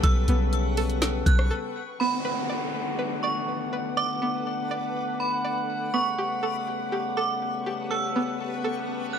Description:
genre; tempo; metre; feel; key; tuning
hip hop, atmospheric cloud-rap; 122 BPM; 4/4; half-time; B minor; A4 = 442 Hz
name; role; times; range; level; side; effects
metallic FM bell; melody; 0.0-9.2 s; B5 to F#6; -31 LUFS; right 3 dB; chorus, tremolo, low-pass filter, ping-pong delay
mellow brass ensemble; sustained chords; 0.0-9.2 s; C#3 to F#5; -30 LUFS; left 2 dB; stereo widening, sidechain pumping
string-like resonator pluck; arpeggios; 0.0-9.2 s; B3 to D5; -33 LUFS; right 2 dB; chorus, low-pass filter, ping-pong delay
soft 808-style bass; bass; 0.0-1.5 s; B1; -24 LUFS; equal; none
smooth R&B drum kit; drums; 0.0-1.5 s; hi-hat, kick drum, rim click, snare drum; -24 LUFS; equal; none
backwards swelling texture; texture; 0.0-9.2 s; B3 to D6; -37 LUFS; left 2 dB; built-in reverb
downlifter and reverse cymbal; sound effects; 2.0-5.9, 9.0-9.2 s; none; -35 LUFS; equal; none
room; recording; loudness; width
light reverb; none; -24 LUFS; side -8 dB against mid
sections
0.0-2.0 A section; 2.0-9.2 B section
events
break 1.5-2.0; reverse cymbal 9.0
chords
0.0 A13/B; 2.0 Bm7; 5.9 A13

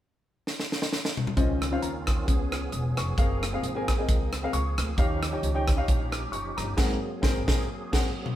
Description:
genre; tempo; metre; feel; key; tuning
uptempo gospel; 133 BPM; 4/4; swing 55% on 8ths; Db major; A4 = 440 Hz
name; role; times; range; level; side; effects
crisp fusion drum kit; drums; 0.5-8.4 s; crash cymbal, hi-hat, kick drum, rim click, snare drum, toms; -26 LUFS; equal; none
warm upright piano; accompaniment; 1.4-8.1 s; Ab2 to F6; -31 LUFS; left 2 dB; none
bright tonewheel organ; sustained chords; 1.4-8.4 s; Eb3 to Ab4; -36 LUFS; right 2 dB; chorus vibrato, slow rotary speaker
upright bass; bass; 1.4-8.1 s; Fb1 to Eb2; -31 LUFS; equal; none
room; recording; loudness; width
moderate stone room reverb, RT60 1.0 s; band playing live in one room; -24 LUFS; side -12 dB against mid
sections
0.0-1.4 A section; 1.4-8.4 B section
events
drum fill 0.5-1.4, 7.7-8.4; band accent 6.8-8.4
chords
0.0 N.C.; 1.4 Dbmaj9; 2.3 Db7; 3.2 Gbmaj9#11; 5.0 Eb9; 6.8 Ab9

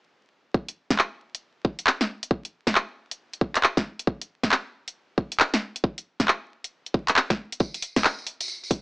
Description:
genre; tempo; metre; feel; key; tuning
UK garage; 136 BPM; 4/4; swing 63% on 16ths; none; none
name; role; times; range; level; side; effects
electronic kick drum; drums; 0.5-8.8 s; none; -24 LUFS; equal; none
garage drum kit; drums; 0.7-8.8 s; handclaps, hi-hat, snare drum; -21 LUFS; equal; none
tambourine; percussion; 7.6-8.7 s; none; -34 LUFS; equal; none
room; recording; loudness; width
little or no reverb; dry, gritty hardware recording, transformer saturation, vinyl crackle, small speaker sound; -23 LUFS; side -27 dB against mid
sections
0.5-8.8 A section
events
none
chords
none

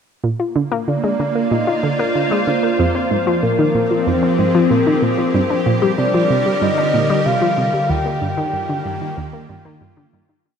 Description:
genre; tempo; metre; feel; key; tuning
ambient, sequencer-driven space music; 94 BPM; 4/4; straight; unclear; A4 = 436 Hz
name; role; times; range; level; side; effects
evolving wavetable pad; sustained chords; 0.9-10.5 s; D3 to F5; -20 LUFS; right 1 dB; ensemble chorus, built-in reverb
analog pluck; riff; 0.2-10.4 s; Eb2 to F4; -19 LUFS; equal; chorus, ping-pong delay
pulsing gated texture; texture; 0.2-10.5 s; F4 to D6; -34 LUFS; equal; chorus, built-in reverb
soft octave-layered synth lead; melody; 0.9-9.8 s; Bb4 to G5; -20 LUFS; left 1 dB; chorus, tremolo, ping-pong delay
room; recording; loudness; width
moderate huge ambient reverb, RT60 8.3 s; none; -15 LUFS; side -7 dB against mid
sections
0.2-10.5 A section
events
fade-in on synth texture 0.2-10.5; fade-out 7.0-10.5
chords
0.2 Bb; 2.8 Fm7; 5.3 Gm; 7.9 Eb

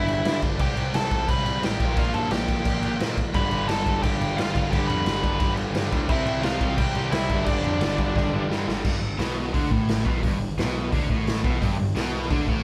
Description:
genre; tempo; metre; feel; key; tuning
punk rock; 174 BPM; 4/4; straight; G mixolydian; A4 = 440 Hz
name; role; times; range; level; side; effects
nasal lead guitar with a parked wah; melody; 0.0-8.5 s; D4 to B5; -30 LUFS; equal; overdrive
distorted electric guitar; riff; 0.0-8.7, 11.6-12.6 s; G2 to C4; -34 LUFS; equal; distortion
sludgy distorted guitar; riff; 0.0-12.6 s; G2 to C4; -35 LUFS; equal; none
growling picked electric bass; bass; 0.0-12.6 s; G1 to Bb2; -33 LUFS; equal; overdrive
raw garage drum kit; drums; 0.1-12.6 s; crash cymbal, hi-hat, kick drum, snare drum; -28 LUFS; equal; none
cranked stack guitar; riff; 3.3-12.6 s; G2 to C4; -32 LUFS; equal; overdrive
room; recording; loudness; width
light reverb; band playing live in one room; -24 LUFS; mono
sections
0.0-8.8 A section; 8.8-12.6 B section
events
drum fill 8.2-8.8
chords
0.0 G5; 0.6 C5; 1.8 Bb5; 3.3 G; 6.1 C; 7.3 G5; 8.8 G

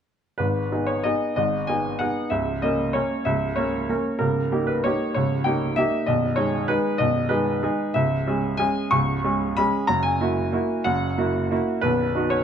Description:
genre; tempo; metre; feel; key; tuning
classical, piano waltz; 175-203 BPM; 3/4; rubato; G# minor; A4 = 435 Hz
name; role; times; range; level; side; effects
bright baby grand piano; solo; 0.4-12.4 s; B0 to C#6; -21 LUFS; equal; none
room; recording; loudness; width
light reverb; close, detailed microphones; -21 LUFS; side -8 dB against mid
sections
0.4-12.4 A section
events
none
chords
0.4 G#m; 2.3 A#dim/C#; 4.2 D#7/C#; 6.1 G#m/B; 8.0 C#m; 9.9 F#7; 11.8 B

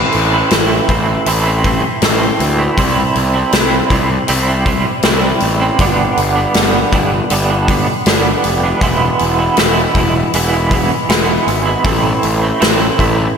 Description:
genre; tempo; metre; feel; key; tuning
quiet-loud alternative rock; 79 BPM; 4/4; straight; A minor; A4 = 440 Hz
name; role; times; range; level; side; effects
twangy electric guitar; arpeggios; 0.0-13.4 s; G2 to E4; -15 LUFS; right 3 dB; tremolo, slapback echo, tape echo
fuzz picked electric bass; bass; 0.0-13.3 s; E1 to D2; -17 LUFS; left 1 dB; overdrive
big rock drum kit; drums; 0.1-13.2 s; hi-hat, kick drum, snare drum; -16 LUFS; left 1 dB; none
room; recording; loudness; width
wet lush hall reverb, RT60 2.5 s; big arena sound; -11 LUFS; side -6 dB against mid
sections
0.0-13.4 A section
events
none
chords
0.0 Am; 2.8 C; 5.8 G; 8.8 E; 11.9 Am

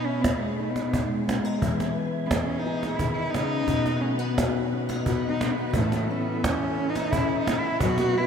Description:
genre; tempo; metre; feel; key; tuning
acoustic folk duo or small band; 87 BPM; 3/4; straight; unclear; A4 = 440 Hz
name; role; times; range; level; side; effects
warm cello; second line; 0.0-8.3 s; G#3 to F#4; -28 LUFS; right 1 dB; ping-pong delay
fingerpicked steel-string acoustic guitar; accompaniment; 0.0-8.3 s; A2 to A4; -28 LUFS; left 3 dB; ensemble chorus
cajon; percussion; 0.2-8.2 s; none; -28 LUFS; right 2 dB; none
tonewheel organ; sustained chords; 1.6-8.3 s; B2 to G#4; -35 LUFS; equal; slow rotary speaker, chorus vibrato
room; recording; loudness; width
moderate huge ambient reverb, RT60 4.3 s; dreamy mix soaked in reverb; -23 LUFS; side -7 dB against mid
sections
0.0-8.3 A section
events
cello solo 0.0-8.3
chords
0.0 B6; 1.6 E; 3.7 B; 5.7 A

